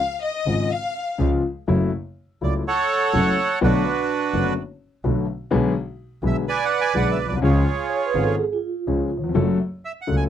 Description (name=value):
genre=tango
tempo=125 BPM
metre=4/4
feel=rubato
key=F# minor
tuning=A4 = 440 Hz
part: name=rich studio violin section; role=second line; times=0.0-1.2 s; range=D#5 to E#5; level=-25 LUFS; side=left 5 dB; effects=none
part: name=dark concert grand piano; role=accompaniment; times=0.5-10.3 s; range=F#1 to A4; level=-22 LUFS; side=left 4 dB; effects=none
part: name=clear double bass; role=bass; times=0.5-10.3 s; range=F#1 to C#2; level=-24 LUFS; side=right 2 dB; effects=none
part: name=bandoneon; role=melody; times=2.4-10.2 s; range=D4 to G#5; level=-22 LUFS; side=right 5 dB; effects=slapback echo
part: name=vibraphone with soft mallets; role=second line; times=7.9-9.5 s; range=E#4 to C#5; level=-25 LUFS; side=right 6 dB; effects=none
room=light reverb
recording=dry, close 1970s-style studio recording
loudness=-20 LUFS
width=side -10 dB against mid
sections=0.0-1.7 A section; 1.7-10.3 B section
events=violin section solo 0.0-1.7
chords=0.0 C#; 1.7 F#m7; 3.6 Bm7; 5.5 G#dim/B; 7.4 C#; 9.4 F#m